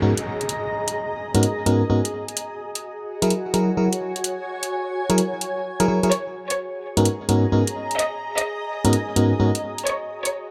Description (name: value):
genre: UK garage, two-step garage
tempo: 128 BPM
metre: 4/4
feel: swing 65% on 16ths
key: G# minor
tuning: A4 = 440 Hz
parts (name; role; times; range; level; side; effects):
- FM electric piano; stabs; 0.0-9.5 s; G#2 to A#4; -22 LUFS; equal; chorus, delay
- downlifter; sound effects; 0.0-2.4 s; none; -38 LUFS; equal; none
- granular cloud pad; texture; 0.0-10.5 s; F#4 to A#5; -30 LUFS; equal; built-in reverb
- electronic hi-hat; drums; 0.2-10.3 s; none; -29 LUFS; equal; none
- rich studio violin section; melody; 6.1-10.5 s; C#5 to D#5; -28 LUFS; equal; delay
room: moderate plate reverb, RT60 1.4 s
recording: dark, warm production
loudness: -23 LUFS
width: mono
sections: 0.0-10.5 A section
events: none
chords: 0.0 G#m11; 2.1 F#7; 6.1 G#m11; 9.6 F#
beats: 0.02 | 0.49 0.96 1.43 1.90 | 2.37 2.83 3.30 3.77 | 4.24 4.71 5.18 5.65 | 6.12 6.58 7.05 7.52 | 7.99 8.46 8.93 9.40 | 9.87 10.34